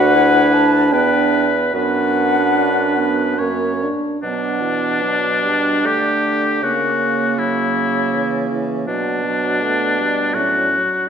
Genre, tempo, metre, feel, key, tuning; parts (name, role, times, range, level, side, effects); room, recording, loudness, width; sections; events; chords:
classical, slow romantic movement for wind quintet; 69-83 BPM; 3/4; rubato; B minor; A4 = 440 Hz
mellow hollow silver concert flute; melody; 0.0-10.8 s; C#5 to A5; -24 LUFS; left 5 dB
warm oboe; second line; 0.0-11.1 s; D4 to C#5; -19 LUFS; left 3 dB
mellow clarinet; accompaniment; 0.0-10.8 s; A#3 to F#4; -22 LUFS; right 7 dB
warm French horn; accompaniment; 0.0-11.1 s; E3 to D4; -23 LUFS; equal
warm bassoon; bass; 0.0-10.8 s; D2 to D3; -22 LUFS; right 3 dB
wet scoring stage reverb, RT60 1.8 s; -15 LUFS; side -7 dB against mid
0.0-4.2 A section; 4.2-11.1 B section
0.0 Bm/D; 0.9 Em7; 1.7 Bm/F#; 3.4 F#; 4.2 Bm; 6.6 F#7/C#; 8.9 Bm